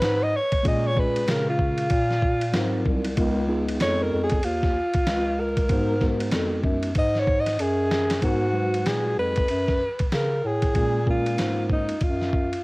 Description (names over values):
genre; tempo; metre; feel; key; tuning
hip hop, jazz-hop; 95 BPM; 4/4; swing 61% on 16ths; G# dorian; A4 = 441 Hz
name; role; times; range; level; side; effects
breathy alto saxophone; melody; 0.0-12.6 s; D#4 to D#5; -25 LUFS; equal; cassette tape, analog delay
dark bass clarinet; bass; 0.0-12.6 s; B#1 to C#3; -26 LUFS; equal; transformer saturation
dusty soul sampler-style drum kit; drums; 0.0-12.6 s; hi-hat, kick drum, ride cymbal, snare drum; -26 LUFS; equal; cassette tape
mellow tine electric piano; accompaniment; 0.6-11.9 s; A#2 to B4; -28 LUFS; equal; medium stereo tremolo, cassette tape
room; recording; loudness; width
digital ambience; home recording on cassette, vinyl crackle; -21 LUFS; side -23 dB against mid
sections
0.0-8.2 A section; 8.2-12.6 B section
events
alto saxophone solo 0.0-8.2; drum fill 7.6-8.2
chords
0.0 G#m; 0.6 A#m7; 2.5 G#13; 3.2 C#9; 5.7 G#m9; 10.8 A#m7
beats
0.01 | 0.65 1.28 1.91 2.54 | 3.17 3.80 4.43 5.07 | 5.70 6.33 6.96 7.59 | 8.22 8.86 9.49 10.12 | 10.75 11.38 12.01